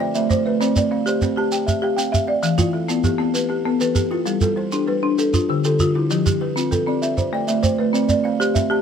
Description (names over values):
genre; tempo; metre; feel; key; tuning
southern african traditional, mbira-style interlocking cycle; 131 BPM (dotted quarters); 12/8; straight; unclear; A4 = 441 Hz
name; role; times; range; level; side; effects
buzzing kalimba; arpeggios; 0.0-8.8 s; D3 to A5; -23 LUFS; right 7 dB; none
folk marimba with medium mallets; arpeggios; 0.0-8.8 s; D3 to G5; -20 LUFS; left 4 dB; tape echo
shekere; percussion; 0.1-8.7 s; none; -22 LUFS; right 3 dB; none
room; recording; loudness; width
light reverb; none; -17 LUFS; side -7 dB against mid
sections
0.0-8.8 A section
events
none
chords
0.0 Am; 0.6 C; 2.4 Em; 4.3 G; 5.2 Dm; 6.1 F; 7.0 Am; 7.9 C